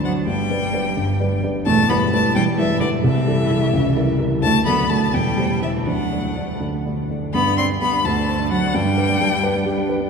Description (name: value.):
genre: quick classical-period movement for piano trio.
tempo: 86 BPM (dotted quarters).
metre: 6/8.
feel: straight.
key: G major.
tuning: A4 = 440 Hz.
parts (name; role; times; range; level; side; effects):
rich violin; melody; 0.0-9.9 s; D5 to C6; -23 LUFS; left 5 dB; none.
rich cello; second line; 0.0-9.9 s; D3 to C4; -23 LUFS; right 4 dB; none.
dark baby grand piano; accompaniment; 0.0-10.1 s; E1 to D5; -20 LUFS; equal; none.
room: wet cathedral reverb, RT60 6.2 s.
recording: recorded in a church or concert hall.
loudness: -17 LUFS.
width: side -5 dB against mid.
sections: 0.0-7.3 A section; 7.3-10.1 B section.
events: none.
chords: 0.3 G; 1.7 Em; 3.0 Am7/C; 3.7 C#dim7; 4.4 D; 5.1 C/E; 5.9 D; 7.3 G5; 8.0 D7; 8.7 G.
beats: | 0.27 0.96 | 1.65 2.34 | 3.04 3.73 | 4.43 5.14 | 5.87 6.61 | 7.34 8.05 | 8.75 9.44.